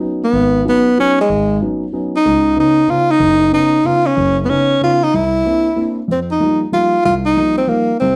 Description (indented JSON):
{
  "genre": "jazz",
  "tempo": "187 BPM",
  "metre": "3/4",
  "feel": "swing 64% on 8ths",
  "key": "unclear",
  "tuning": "A4 = 440 Hz",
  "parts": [
    { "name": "dark concert grand piano", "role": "accompaniment", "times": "0.0-8.2 s", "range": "Gb1 to E4", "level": "-21 LUFS", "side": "equal", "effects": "none" },
    { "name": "warm tenor saxophone", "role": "melody", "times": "0.2-8.2 s", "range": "Ab3 to F4", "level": "-15 LUFS", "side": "equal", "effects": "slapback echo" }
  ],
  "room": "moderate booth ambience, RT60 0.2 s",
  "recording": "dry, close 1970s-style studio recording",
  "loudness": "-14 LUFS",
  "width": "mono",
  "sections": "0.0-6.1 A section; 6.1-8.2 B section",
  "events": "none",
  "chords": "0.0 Db9sus4; 2.2 Cbadd9; 5.1 C9; 6.1 F9sus4"
}